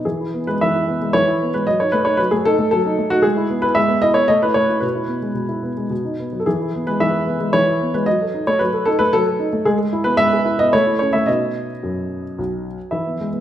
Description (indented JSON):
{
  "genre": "classical-period piano sonatina",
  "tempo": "112 BPM",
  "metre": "3/4",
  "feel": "straight",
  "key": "E major",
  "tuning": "A4 = 440 Hz",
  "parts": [
    { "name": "warm baby grand piano", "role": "solo", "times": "0.0-13.4 s", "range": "B1 to E5", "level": "-16 LUFS", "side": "equal", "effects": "none" }
  ],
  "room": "wet recital hall reverb, RT60 1.5 s",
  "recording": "none",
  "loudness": "-16 LUFS",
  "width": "side -11 dB against mid",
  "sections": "0.0-12.9 A section",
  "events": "none",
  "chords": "0.0 E; 1.7 D#dim/F#; 3.2 E/G#; 4.3 A; 4.8 E/B; 5.9 B; 6.5 E; 8.1 D#dim/F#; 9.7 E/G#; 10.7 A; 11.3 B",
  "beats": "| 0.04 0.58 1.12 | 1.66 2.19 2.72 | 3.25 3.77 4.30 | 4.83 5.38 5.92 | 6.46 7.00 7.54 | 8.07 8.60 9.13 | 9.66 10.19 10.73 | 11.27 11.83 12.39 | 12.93"
}